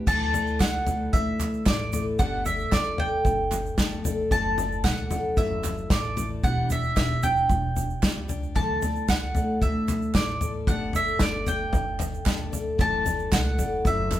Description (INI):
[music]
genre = indie folk with a building arrangement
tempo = 113 BPM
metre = 4/4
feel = straight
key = D major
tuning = A4 = 440 Hz
[part]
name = fingerpicked steel-string acoustic guitar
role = accompaniment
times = 0.0-2.2 s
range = E3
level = -47 LUFS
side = right 1 dB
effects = none
[part]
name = upright bass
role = bass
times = 0.0-14.2 s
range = E1 to D2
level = -30 LUFS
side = equal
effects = none
[part]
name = mandolin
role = melody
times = 0.1-14.2 s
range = D5 to A5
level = -28 LUFS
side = right 1 dB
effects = none
[part]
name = picked steel-string acoustic guitar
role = accompaniment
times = 0.1-14.2 s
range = F#2 to D5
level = -32 LUFS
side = left 3 dB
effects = none
[part]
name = unplugged drum kit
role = drums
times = 0.1-14.2 s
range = crash cymbal, kick drum, snare drum, toms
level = -26 LUFS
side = equal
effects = none
[part]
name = egg shaker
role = percussion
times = 0.1-14.2 s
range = none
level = -41 LUFS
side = right 8 dB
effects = none
[part]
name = group handclap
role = percussion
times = 0.6-14.2 s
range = none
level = -37 LUFS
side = right 4 dB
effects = none
[sound]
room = moderate studio reverb, RT60 0.8 s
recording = band playing live in one room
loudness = -22 LUFS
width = side -13 dB against mid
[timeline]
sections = 0.1-14.2 A section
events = none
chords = 0.1 Dadd9; 2.2 Gadd9; 4.3 Dadd9/F#; 6.4 Em7; 8.6 Dadd9; 10.7 Gadd9; 12.8 Dadd9/F#